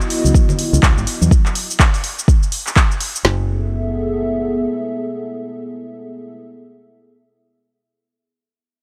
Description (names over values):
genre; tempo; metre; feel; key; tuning
deep house; 124 BPM; 4/4; swing 59% on 16ths; F# dorian; A4 = 439 Hz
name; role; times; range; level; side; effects
dark analog pad; sustained chords; 0.0-6.3 s; B3 to E5; -25 LUFS; equal; chorus, sidechain pumping
house drum kit; drums; 0.0-3.2 s; handclaps, hi-hat, shaker; -22 LUFS; equal; overdrive
fingered electric bass; bass; 0.2-4.7 s; F#1 to E2; -21 LUFS; equal; sidechain pumping
congas; percussion; 0.2-1.3 s; none; -27 LUFS; equal; none
deep house drum kit; drums; 0.3-3.4 s; kick drum, snare drum; -16 LUFS; equal; none
room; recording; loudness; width
little or no reverb; dry, gritty hardware recording; -17 LUFS; mono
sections
0.0-3.2 A section; 3.2-7.1 B section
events
drop 0.0-3.2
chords
0.0 C#m11 (rootless); 3.2 F#m11